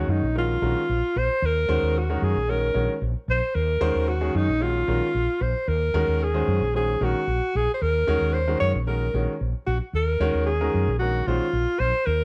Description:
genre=jazz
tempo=113 BPM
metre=4/4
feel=straight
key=Eb dorian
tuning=A4 = 442 Hz
part: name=mellow alto saxophone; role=melody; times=0.0-12.2 s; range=Eb4 to Db5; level=-27 LUFS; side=equal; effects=slapback echo
part: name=clear concert grand piano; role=accompaniment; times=0.0-11.6 s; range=Eb3 to Db5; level=-31 LUFS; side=equal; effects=none
part: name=woody fretless electric bass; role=bass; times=0.0-12.2 s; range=Bb1 to Gb2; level=-27 LUFS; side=equal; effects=subtle chorus
room=moderate large studio reverb, RT60 0.8 s, small room ambience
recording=nothing above 11.0 kHz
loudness=-24 LUFS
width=mono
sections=0.0-12.2 A section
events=none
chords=0.0 Ebm7

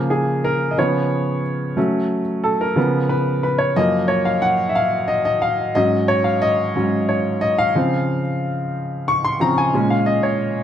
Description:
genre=gospel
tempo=60 BPM (dotted quarters)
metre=6/8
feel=straight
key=Db major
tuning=A4 = 440 Hz
part: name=clear baby grand piano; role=solo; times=0.0-10.6 s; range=Gb2 to Db6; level=-17 LUFS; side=equal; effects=none
room=moderate large studio reverb, RT60 1.1 s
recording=band playing live in one room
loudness=-17 LUFS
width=side -10 dB against mid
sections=0.0-10.6 A section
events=grand piano solo 0.0-10.6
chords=0.0 Db6; 0.8 Db7; 1.8 Gbm; 2.8 Db7; 3.8 Gbmaj7; 5.8 Ab7sus4; 7.7 Dbmaj7; 9.7 Bbm7

